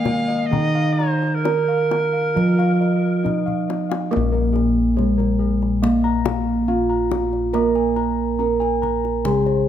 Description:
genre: Javanese gamelan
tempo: 63-70 BPM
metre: 4/4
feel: straight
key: Bb slendro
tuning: A4 = 441 Hz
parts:
  - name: gamelan-type bronze metallophone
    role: melody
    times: 0.0-9.7 s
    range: Ab3-40c to Bb4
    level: -21 LUFS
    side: right 1 dB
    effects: none
  - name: bright reedy tenor recorder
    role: second line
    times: 0.0-3.3 s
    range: Bb4 to F5+21c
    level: -26 LUFS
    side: equal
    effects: tape echo
  - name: gamelan-type bronze metallophone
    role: accompaniment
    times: 0.0-9.7 s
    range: Eb3-20c to Bb3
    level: -23 LUFS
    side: right 6 dB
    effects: none
  - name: gamelan-type bossed gongs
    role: arpeggios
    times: 0.0-9.7 s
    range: Ab4-40c to Bb5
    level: -28 LUFS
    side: left 9 dB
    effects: none
  - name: gamelan-type bossed gongs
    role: bass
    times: 0.0-9.7 s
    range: Bb1 to Bb4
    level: -24 LUFS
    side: left 2 dB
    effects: none
  - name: kendang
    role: percussion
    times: 0.1-9.6 s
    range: none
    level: -29 LUFS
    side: left 6 dB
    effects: none
room: light reverb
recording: close, detailed microphones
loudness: -17 LUFS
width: side -10 dB against mid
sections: 0.0-4.1 A section; 4.1-9.7 B section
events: drum fill 3.5-4.1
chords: none

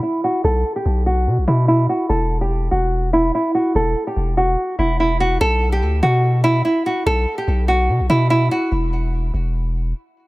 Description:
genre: hip hop, drill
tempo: 145 BPM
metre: 4/4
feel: half-time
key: unclear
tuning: A4 = 441 Hz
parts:
  - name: nylon-string guitar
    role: melody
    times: 0.0-8.7 s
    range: E4 to A4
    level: -18 LUFS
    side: right 1 dB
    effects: low-pass filter
  - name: long sustained 808-style bass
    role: bass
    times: 0.4-9.9 s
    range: E1 to B2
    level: -18 LUFS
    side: equal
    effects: none
room: small room ambience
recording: none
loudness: -16 LUFS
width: side -20 dB against mid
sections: 0.0-10.3 A section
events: filter sweep on nylon-string guitar 0.0-5.4; break 8.7-10.3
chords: 0.0 B5; 2.1 Esus2; 5.4 B5; 8.7 N.C.

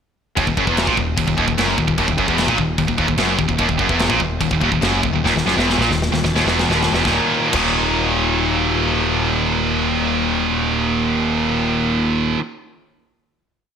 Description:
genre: heavy metal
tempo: 125-149 BPM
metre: 4/4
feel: straight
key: Eb phrygian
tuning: A4 = 440 Hz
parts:
  - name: cranked stack guitar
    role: riff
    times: 0.4-12.4 s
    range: Eb2 to Eb4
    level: -24 LUFS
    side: equal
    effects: overdrive
  - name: high-gain distorted guitar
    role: riff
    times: 0.4-12.4 s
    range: Eb2 to Eb3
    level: -21 LUFS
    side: left 8 dB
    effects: distortion
  - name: scooped high-gain guitar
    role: riff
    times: 0.4-12.4 s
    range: Eb2 to Eb3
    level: -20 LUFS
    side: right 9 dB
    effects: distortion
  - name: growling picked electric bass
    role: bass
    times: 0.4-12.3 s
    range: Eb1 to Bb1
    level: -24 LUFS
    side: equal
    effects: overdrive
  - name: tight metal drum kit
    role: drums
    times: 0.4-7.7 s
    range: crash cymbal, kick drum, snare drum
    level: -23 LUFS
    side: equal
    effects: gated reverb
room: moderate plate reverb, RT60 1.3 s, small room ambience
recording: bright 1980s-style digital production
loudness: -16 LUFS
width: side -7 dB against mid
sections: 0.4-7.0 riff; 7.0-10.9 final chord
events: slowing down 3.6-7.0; drum fill 5.2-7.0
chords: 0.4 Ebm

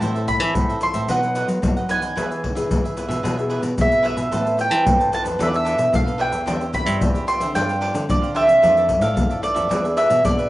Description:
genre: samba and choro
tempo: 112 BPM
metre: 4/4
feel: straight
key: unclear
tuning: A4 = 440 Hz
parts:
  - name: mandolin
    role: melody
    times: 0.0-10.5 s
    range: D5 to C6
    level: -19 LUFS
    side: right 1 dB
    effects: cassette tape
  - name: cavaquinho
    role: accompaniment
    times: 0.0-10.5 s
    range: D4 to A5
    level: -29 LUFS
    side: right 2 dB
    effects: cassette tape
  - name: nylon-string guitar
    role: accompaniment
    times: 0.0-10.5 s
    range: F2 to B4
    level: -29 LUFS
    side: left 1 dB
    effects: cassette tape
  - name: nylon-string guitar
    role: bass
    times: 0.0-10.5 s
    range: E2 to F#3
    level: -26 LUFS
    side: equal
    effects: none
  - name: tube shaker, surdo and pandeiro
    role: percussion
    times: 0.0-10.5 s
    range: none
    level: -24 LUFS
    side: left 1 dB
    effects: none
room: light reverb, small room ambience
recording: home recording on cassette, nothing above 10.5 kHz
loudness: -17 LUFS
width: side -16 dB against mid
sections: 0.0-10.5 A section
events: none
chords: 0.0 Am; 1.1 B; 2.2 E; 4.3 Amadd9; 5.4 E7sus4; 6.5 Cadd9/E; 7.5 G7sus4; 8.6 Dmadd9/F; 9.7 E7

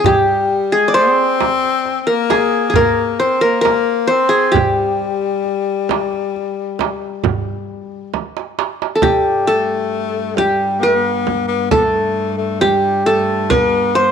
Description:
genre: Arabic maqam ensemble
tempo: 134 BPM (eighths)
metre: 10/8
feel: straight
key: G maqam kurd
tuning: A4 = 441 Hz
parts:
  - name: qanun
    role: melody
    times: 0.0-14.1 s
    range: G4 to D5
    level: -14 LUFS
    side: equal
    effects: none
  - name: darbuka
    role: percussion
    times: 0.0-9.0 s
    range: none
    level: -21 LUFS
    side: right 8 dB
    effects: none
  - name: clear tenor saxophone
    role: second line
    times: 0.1-14.1 s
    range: G3 to C4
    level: -20 LUFS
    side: left 9 dB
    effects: none
  - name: frame drum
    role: percussion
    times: 0.1-13.7 s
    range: none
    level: -22 LUFS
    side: right 7 dB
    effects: none
  - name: rich cello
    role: drone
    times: 9.0-14.1 s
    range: G2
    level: -25 LUFS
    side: right 1 dB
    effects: none
room: moderate echo chamber reverb, RT60 1.6 s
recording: 1960s-style stereo with parts hard left and right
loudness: -14 LUFS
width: side -7 dB against mid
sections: 0.0-9.0 A section; 9.0-14.1 B section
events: drum fill 8.1-9.0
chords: none

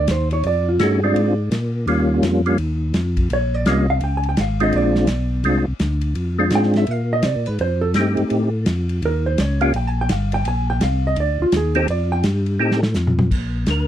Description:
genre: soul jazz organ trio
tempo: 168 BPM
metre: 4/4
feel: swing 64% on 8ths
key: Bb mixolydian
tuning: A4 = 443 Hz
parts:
  - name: hollow-body jazz guitar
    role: accompaniment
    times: 0.0-12.2 s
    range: F4 to Ab5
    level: -22 LUFS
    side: right 3 dB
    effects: none
  - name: tonewheel organ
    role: bass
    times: 0.0-13.9 s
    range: G1 to C3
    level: -20 LUFS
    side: equal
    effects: overdrive, chorus vibrato, slow rotary speaker
  - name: warm soul drum kit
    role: drums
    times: 0.1-13.8 s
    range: crash cymbal, hi-hat, kick drum, ride cymbal, snare drum, toms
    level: -24 LUFS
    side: equal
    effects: none
  - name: percussive tonewheel organ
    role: melody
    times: 0.8-13.9 s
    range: G3 to Bb4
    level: -18 LUFS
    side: equal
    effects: chorus vibrato, fast rotary speaker
room: light reverb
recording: dry, close 1970s-style studio recording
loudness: -17 LUFS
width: side -11 dB against mid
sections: 0.0-13.3 A section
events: hollow-body jazz guitar solo 0.0-13.3; drum fill 12.6-13.3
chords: 0.0 Bb9; 1.9 Eb9; 4.7 Bb9; 7.6 F9; 9.0 Eb9; 10.5 Bbadd9; 11.9 F9; 13.3 Bb

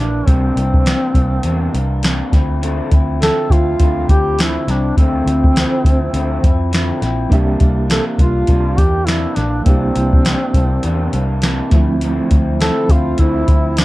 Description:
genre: indie pop, bedroom pop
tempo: 102 BPM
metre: 4/4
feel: swing 60% on 16ths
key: unclear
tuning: A4 = 439 Hz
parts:
  - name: warm duduk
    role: melody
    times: 0.0-13.8 s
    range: C4 to A4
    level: -19 LUFS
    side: equal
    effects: analog chorus
  - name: electric guitar through a small old amp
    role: accompaniment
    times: 0.0-13.8 s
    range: C3 to E4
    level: -22 LUFS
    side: left 1 dB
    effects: lush chorus, vibrato effect
  - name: vintage muted fingered electric bass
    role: bass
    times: 0.0-13.8 s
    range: Bb1 to F2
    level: -18 LUFS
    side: equal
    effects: none
  - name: soft vintage rhythm box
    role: drums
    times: 0.3-13.8 s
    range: hi-hat, kick drum, snare drum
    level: -14 LUFS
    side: equal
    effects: none
  - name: reed electric piano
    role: accompaniment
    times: 7.3-13.8 s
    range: F3 to E5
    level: -23 LUFS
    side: right 2 dB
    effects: fast tremolo, cassette tape
room: little or no reverb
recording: cassette tape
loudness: -12 LUFS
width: side -18 dB against mid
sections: 0.0-13.8 A section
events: none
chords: 0.0 C9; 2.3 Dm9; 7.3 C9; 11.7 Dm9

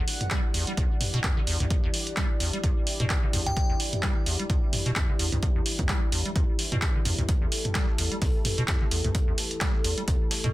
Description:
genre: acid house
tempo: 129 BPM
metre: 4/4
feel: swing 56% on 16ths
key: E minor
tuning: A4 = 440 Hz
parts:
  - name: dark analog pad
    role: sustained chords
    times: 0.0-10.5 s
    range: E3 to D5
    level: -35 LUFS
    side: left 1 dB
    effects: chorus, sidechain pumping
  - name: acid bass, square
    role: riff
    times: 0.0-10.5 s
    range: D2 to G3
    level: -30 LUFS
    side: equal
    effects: lush chorus
  - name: punchy analog drum machine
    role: drums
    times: 0.1-10.5 s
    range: handclaps, hi-hat, toms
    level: -29 LUFS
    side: right 1 dB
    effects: none
  - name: electronic kick drum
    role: drums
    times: 0.3-10.2 s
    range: none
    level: -26 LUFS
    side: equal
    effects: none
  - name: glassy synth bell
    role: melody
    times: 3.5-3.8 s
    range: G5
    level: -34 LUFS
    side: left 1 dB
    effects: chorus, digital delay
  - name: breakbeat sampler-style drum kit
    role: drums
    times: 7.3-10.4 s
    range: hi-hat, snare drum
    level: -39 LUFS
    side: equal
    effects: high-pass filter on hats, high-pass filter on snare
room: light reverb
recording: dense, heavily limited modern master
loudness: -24 LUFS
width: side -17 dB against mid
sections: 0.0-10.5 A section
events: none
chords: 0.0 Em7

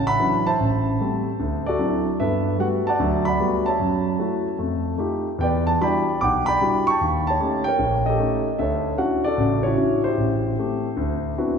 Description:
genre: solo jazz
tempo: 150 BPM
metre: 4/4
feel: swing 67% on 8ths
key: D major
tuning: A4 = 441 Hz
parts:
  - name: dark concert grand piano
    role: solo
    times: 0.0-11.6 s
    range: A1 to D6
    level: -19 LUFS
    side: equal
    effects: none
room: wet church reverb, RT60 2.6 s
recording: recorded in a church or concert hall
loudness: -19 LUFS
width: side -6 dB against mid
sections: 0.0-11.6 A section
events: none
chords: 0.0 Dmaj9; 0.6 Am7; 1.4 D9; 2.2 Gmaj9; 3.8 F#m7; 4.6 F9; 5.4 Em9; 7.0 Eb7#11; 8.6 Dmaj9; 10.2 Am7; 11.0 D13

